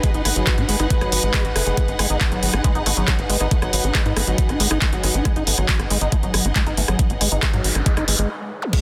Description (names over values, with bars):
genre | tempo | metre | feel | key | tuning
psychedelic trance | 138 BPM | 4/4 | straight | G# minor | A4 = 440 Hz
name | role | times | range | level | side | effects
pulsing gated texture | sustained chords | 0.0-8.8 s | B4 | -33 LUFS | equal | chorus, built-in reverb, sidechain pumping
liquid acid bass | riff | 0.0-8.8 s | F#3 to D#4 | -29 LUFS | equal | phaser, sidechain pumping, dub echo
drum and bass drum kit | drums | 0.0-8.8 s | crash cymbal, handclaps, hi-hat, rim click | -25 LUFS | equal | overdrive
electronic kick drum | drums | 0.0-8.8 s | none | -22 LUFS | equal | overdrive
warm symphonic string section | texture | 0.0-8.8 s | D#4 to F#5 | -32 LUFS | equal | sidechain pumping
tight sequencer bass | bass | 0.1-8.3 s | F#1 to G#2 | -25 LUFS | equal | none
noise sweep and zap | sound effects | 7.6-8.7 s | none | -32 LUFS | equal | none
room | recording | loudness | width
light reverb | dense, heavily limited modern master | -20 LUFS | mono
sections
0.0-8.7 A section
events
noise sweep 7.6-8.7; stop 8.3-8.7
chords
0.0 G#5